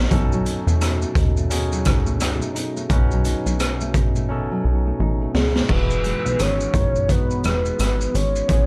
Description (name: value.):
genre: indie pop, bedroom pop.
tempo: 86 BPM.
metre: 4/4.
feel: swing 60% on 16ths.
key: E major.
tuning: A4 = 441 Hz.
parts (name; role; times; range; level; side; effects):
barky tine electric piano; accompaniment; 0.0-8.7 s; B3 to B4; -32 LUFS; equal; overdrive, cassette tape.
nylon-string guitar; accompaniment; 0.0-8.7 s; A2 to D#4; -31 LUFS; equal; lush chorus, warbly pitch drift.
plucky analog bass; bass; 0.0-8.7 s; E1 to E2; -24 LUFS; equal; none.
raw garage drum kit; drums; 0.1-8.7 s; crash cymbal, hi-hat, kick drum, rim click, shaker, snare drum; -24 LUFS; equal; none.
soft octave-layered synth lead; melody; 5.4-8.7 s; G#4 to C#5; -27 LUFS; equal; phaser, subtle chorus, digital delay.
room: little or no reverb.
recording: dark, warm production.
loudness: -21 LUFS.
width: mono.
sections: 0.1-5.7 A section; 5.7-8.7 B section.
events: drum fill 4.3-5.7.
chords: 0.1 B7; 5.7 Emaj7.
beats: | 0.11 0.81 1.50 2.20 | 2.90 3.60 4.30 5.00 | 5.70 6.39 7.09 7.79 | 8.49.